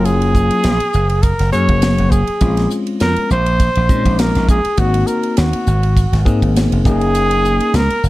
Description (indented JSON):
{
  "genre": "electric jazz fusion",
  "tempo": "102 BPM",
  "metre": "4/4",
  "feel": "swing 54% on 16ths",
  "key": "unclear",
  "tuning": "A4 = 438 Hz",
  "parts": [
    { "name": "breathy trumpet", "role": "melody", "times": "0.0-8.0 s", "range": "Gb4 to Db5", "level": "-18 LUFS", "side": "right 1 dB", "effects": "slapback echo" },
    { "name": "bell-like tine electric piano", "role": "accompaniment", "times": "0.0-7.8 s", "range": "Gb3 to Ab4", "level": "-19 LUFS", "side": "left 3 dB", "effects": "none" },
    { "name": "slap bass", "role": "bass", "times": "0.0-8.1 s", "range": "F1 to Bb2", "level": "-16 LUFS", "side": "equal", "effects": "none" },
    { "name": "tight funk drum kit", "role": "drums", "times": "0.1-8.1 s", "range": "hi-hat, kick drum, ride cymbal, snare drum", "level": "-18 LUFS", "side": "equal", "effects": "none" }
  ],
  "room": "light reverb",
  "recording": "dark, warm production",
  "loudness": "-12 LUFS",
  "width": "side -17 dB against mid",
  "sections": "0.0-8.1 A section",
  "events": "none",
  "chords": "0.0 Gbmaj9; 2.4 Bbm7; 4.8 Ab9; 6.9 Gb6",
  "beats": "| 0.06 0.65 1.24 1.83 | 2.42 3.01 3.60 4.20 | 4.79 5.38 5.97 6.56 | 7.15 7.74"
}